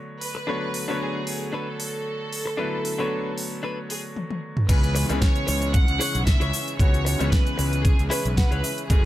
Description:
nu-disco, nu disco; 114 BPM; 4/4; swing 54% on 16ths; A4 = 440 Hz
clear grand piano; accompaniment; 0.0-9.1 s; C#3 to C#5; -29 LUFS; left 1 dB; sidechain pumping
warm studio violin section; melody; 0.2-9.1 s; G#4 to F#5; -30 LUFS; right 1 dB; tape echo
pop drum kit; drums; 0.2-9.0 s; cabasa, crash cymbal, hi-hat, rim click, snare drum, toms; -29 LUFS; equal; small room reverb
direct-recorded clean electric guitar; riff; 0.3-8.9 s; D4 to F#5; -31 LUFS; left 2 dB; lush chorus, vintage 12-bit sampler grit, low-pass filter
fuzz fingered electric bass; bass; 4.7-9.1 s; F#1 to C#2; -26 LUFS; equal; overdrive
electronic kick drum; drums; 4.7-9.0 s; -19 LUFS; equal; small room reverb
little or no reverb; -21 LUFS; side -14 dB against mid
0.0-4.7 A section; 4.7-9.1 B section
drum fill 4.2-4.7; drop 4.7-9.1; clean electric guitar fill 8.1-8.9
0.0 Bm7; 4.7 C#m7

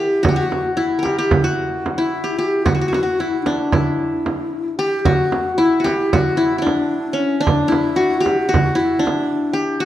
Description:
Turkish makam ensemble; 224 BPM (eighths); 9/8; straight; E makam nikriz; A4 = 440 Hz
qanun; melody; 0.0-9.8 s; C#4 to A#4; -19 LUFS; left 1 dB
breathy mellow low ney; second line; 0.0-9.6 s; C#4 to G4+27c; -22 LUFS; left 2 dB
frame drum; percussion; 0.2-9.2 s; -20 LUFS; right 3 dB
wet recital hall reverb, RT60 1.7 s; dark, warm production; -16 LUFS; side -12 dB against mid
0.0-5.1 A section; 5.1-9.8 A section

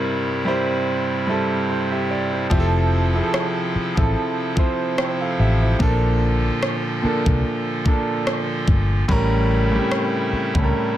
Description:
contemporary R&B; 73 BPM; 4/4; swing 54% on 16ths; F major; A4 = 440 Hz
bright grand piano; accompaniment; 0.0-11.0 s; A2 to G5; -21 LUFS; right 1 dB
pipe organ, clarinet reed; sustained chords; 0.0-11.0 s; G2 to A4; -26 LUFS; equal; sidechain pumping
vintage muted fingered electric bass; bass; 2.5-10.7 s; F1 to C#2; -20 LUFS; left 1 dB
smooth R&B drum kit; drums; 2.5-10.7 s; kick drum, rim click; -21 LUFS; equal
light reverb, small room reverb; -18 LUFS; side -12 dB against mid
0.0-11.0 A section
0.0 C7/G; 2.5 Fmaj7; 5.8 Bbmaj7; 9.1 A7b9

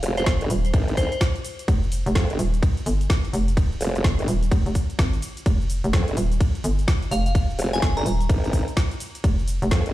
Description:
bass house; 127 BPM; 4/4; swing 62% on 16ths; F minor; A4 = 440 Hz
formant-sweep wobble bass; bass; 0.0-9.9 s; F1 to F2; -24 LUFS; equal; chorus, overdrive, sidechain pumping
garage drum kit; drums; 0.0-9.9 s; cabasa, hi-hat, ride cymbal, snare drum; -31 LUFS; equal
glassy synth bell; melody; 0.2-1.2, 7.1-8.2 s; C5 to Bb5; -30 LUFS; left 1 dB; chorus, digital delay
hollow knocking FM bass; bass; 0.3-9.7 s; Eb1 to Ab1; -23 LUFS; equal; sidechain pumping
electronic kick drum; drums; 0.3-9.8 s; -20 LUFS; equal
little or no reverb; played on a big sound system in a bare room, large studio reverb; -20 LUFS; side -15 dB against mid
0.0-9.9 A section

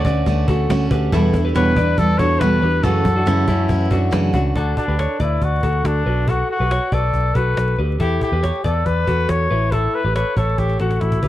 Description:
jangly indie pop; 139 BPM; 4/4; straight; D major; A4 = 440 Hz
warm trumpet; melody; 0.0-11.3 s; D4 to C#5; -22 LUFS; left 2 dB
picked steel-string acoustic guitar; accompaniment; 0.0-4.6 s; E2 to F#4; -21 LUFS; right 3 dB
electric guitar through a small old amp; arpeggios; 0.0-11.3 s; C#4 to D5; -24 LUFS; left 2 dB
vintage muted picked electric bass; bass; 0.0-11.3 s; A1 to F#2; -19 LUFS; equal
cajon; drums; 0.0-11.3 s; -25 LUFS; equal
light reverb, small room ambience; dark, warm production, vinyl crackle; -16 LUFS; side -14 dB against mid
0.0-4.6 A section; 4.6-11.3 B section
drum fill 10.6-11.3
0.0 Dmaj7; 1.1 Em7; 2.8 F#m7; 4.6 D; 6.1 Bm; 8.0 Em; 9.5 A

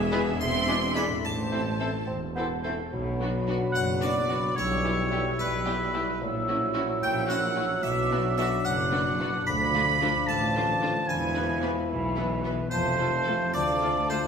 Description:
cinematic; 73 BPM (dotted quarters); 6/8; straight; B minor; A4 = 439 Hz
harpsichord; melody; 0.0-14.3 s; B4 to C6; -36 LUFS; equal
mellow large flute ensemble; second line; 0.0-14.3 s; G#4 to E6; -34 LUFS; right 1 dB
rich studio violin section; second line; 0.0-14.2 s; B4 to C6; -36 LUFS; equal
concert harp; arpeggios; 0.0-14.3 s; E2 to B5; -34 LUFS; left 5 dB
bright studio double bass section; bass; 0.0-14.2 s; E1 to D2; -35 LUFS; right 1 dB
mellow tuba; bass; 0.0-14.2 s; E1 to D2; -35 LUFS; right 1 dB
rich studio cello section; bass; 0.0-14.2 s; D2 to C4; -36 LUFS; right 2 dB
rich studio violin section; melody; 0.1-14.2 s; F4 to B4; -40 LUFS; left 3 dB
clear oboe; second line; 0.1-14.2 s; B4 to B5; -30 LUFS; right 2 dB
mellow bassoon; accompaniment; 0.1-14.3 s; E3 to C4; -34 LUFS; right 2 dB
rich studio viola section; accompaniment; 0.1-14.2 s; E3 to F4; -37 LUFS; equal
mellow French horn section; sustained chords; 0.1-14.3 s; E3 to A4; -36 LUFS; left 3 dB
wet scoring stage reverb, RT60 1.6 s; recorded in a church or concert hall; -24 LUFS; side -6 dB against mid
0.0-2.9 A section; 2.9-14.3 B section
0.4 E7; 1.2 Am; 2.9 Bm; 4.6 Em/B; 6.2 F#7/A#; 7.8 Bm; 9.5 Dm; 11.1 E; 12.7 F; 13.5 Dm

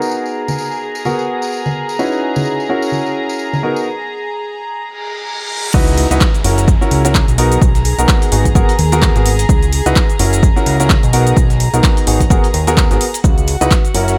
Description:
piano house; 128 BPM; 4/4; swing 57% on 16ths; C# dorian; A4 = 440 Hz
warm studio violin section; sustained chords; 0.0-14.2 s; F#4 to A#5; -25 LUFS; equal; sidechain pumping, low-pass filter
warm concert grand piano; riff; 0.0-14.2 s; B3 to B4; -20 LUFS; equal; sidechain pumping, delay
tambourine and congas; percussion; 0.0-3.8 s; -26 LUFS; equal
reverse cymbal and downlifter; sound effects; 5.0-9.5 s; -29 LUFS; equal
fat analog bass; bass; 5.7-14.2 s; F#1 to D#2; -17 LUFS; equal; sidechain pumping
dusty soul sampler-style drum kit; drums; 5.7-14.2 s; hi-hat, shaker, snare drum; -32 LUFS; equal
electronic kick drum; drums; 5.7-13.8 s; -15 LUFS; equal; overdrive, studio reverb
punchy analog drum machine; drums; 5.7-14.2 s; crash cymbal, handclaps, hi-hat, shaker; -22 LUFS; equal; overdrive, studio reverb
digital ambience; -14 LUFS; mono
0.0-5.7 A section; 5.7-14.2 B section
break 3.9-5.7; reverse cymbal 5.0-5.7; drop 5.7-14.2
0.0 Bmaj7; 1.1 G#m9; 2.0 C#m11; 2.7 F#7; 3.6 Bmaj7; 4.8 G#sus2; 5.7 C#m11; 6.4 F#7; 7.4 G#m9; 9.5 C#m11; 10.2 F#7; 11.1 G#m9; 13.2 C#m11

